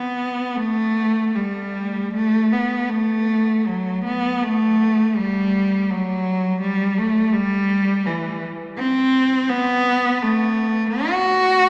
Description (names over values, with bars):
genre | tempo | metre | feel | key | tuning
classical, free, expressive piece for unaccompanied cello | 66-86 BPM | 3/4 | rubato | unclear | A4 = 443 Hz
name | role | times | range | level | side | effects
rich cello | solo | 0.0-11.7 s | E3 to F#4 | -20 LUFS | equal | none
room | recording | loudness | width
wet cathedral reverb, RT60 4.1 s | none | -20 LUFS | mono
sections
0.0-11.7 A section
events
none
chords
none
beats
0.56 1.35 | 2.13 2.91 3.68 | 4.43 5.19 5.92 | 6.62 7.34 8.06 | 8.78 9.51 10.24 | 11.09